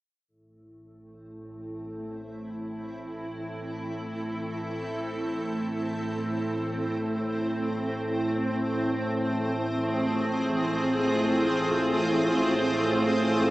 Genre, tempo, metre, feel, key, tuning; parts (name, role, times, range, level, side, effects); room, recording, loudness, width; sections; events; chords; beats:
dark ambient drone; free time; A harmonic minor; A4 = 441 Hz
granular cloud pad; sustained chords; 1.9-13.5 s; C4 to C5; -28 LUFS; equal; built-in reverb
organ-like drone; drone; 1.2-13.5 s; A1 to A2; -29 LUFS; right 1 dB; ensemble chorus, built-in reverb
wet huge ambient reverb, RT60 7.8 s; small speaker sound; -25 LUFS; side -17 dB against mid
0.3-13.5 A section
fade-in on ambient pad 0.3-13.5
0.3 Am; 7.8 Fm
free time